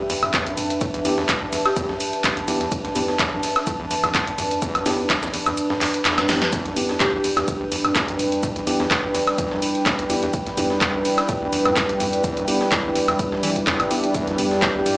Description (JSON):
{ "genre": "acid house", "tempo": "126 BPM", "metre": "4/4", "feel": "swing 54% on 16ths", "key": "E minor", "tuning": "A4 = 440 Hz", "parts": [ { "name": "vibraphone with medium mallets", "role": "melody", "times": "0.0-1.8, 7.0-7.7, 14.6-15.0 s", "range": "G4", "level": "-27 LUFS", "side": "equal", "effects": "digital delay" }, { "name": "overdriven acid bass", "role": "riff", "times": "0.0-15.0 s", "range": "E2 to E3", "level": "-31 LUFS", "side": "equal", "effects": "distortion, tube saturation, sidechain pumping, digital delay" }, { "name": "warbly tape-like pad", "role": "texture", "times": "0.0-15.0 s", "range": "D4 to A5", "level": "-25 LUFS", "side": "equal", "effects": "chorus, built-in reverb, sidechain pumping" }, { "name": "breakbeat sampler-style drum kit", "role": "drums", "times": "0.1-15.0 s", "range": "hi-hat, shaker, snare drum", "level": "-31 LUFS", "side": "equal", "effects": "high-pass filter on perc, high-pass filter on snare, high-pass filter on hats" }, { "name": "punchy analog drum machine", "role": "drums", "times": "0.1-15.0 s", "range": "handclaps, hi-hat, ride cymbal, snare drum, toms, woodblock", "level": "-23 LUFS", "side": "equal", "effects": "none" }, { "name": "electronic kick drum", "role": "drums", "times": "0.3-14.7 s", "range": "none", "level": "-30 LUFS", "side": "equal", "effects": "none" }, { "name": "mellow tine electric piano", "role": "stabs", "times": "1.1-14.5 s", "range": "B3 to G4", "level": "-26 LUFS", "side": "equal", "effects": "medium stereo tremolo, digital delay" }, { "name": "warm analog pad", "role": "sustained chords", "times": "6.5-15.0 s", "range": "G3 to B4", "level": "-26 LUFS", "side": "equal", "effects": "chorus, sidechain pumping" } ], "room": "moderate studio reverb, RT60 0.5 s", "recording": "played on a big sound system in a bare room, large studio reverb, small speaker sound", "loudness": "-19 LUFS", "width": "side -23 dB against mid", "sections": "0.0-15.0 A section", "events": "kick drops out 5.6-6.5; drum fill 6.2-6.5", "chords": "0.0 Em7" }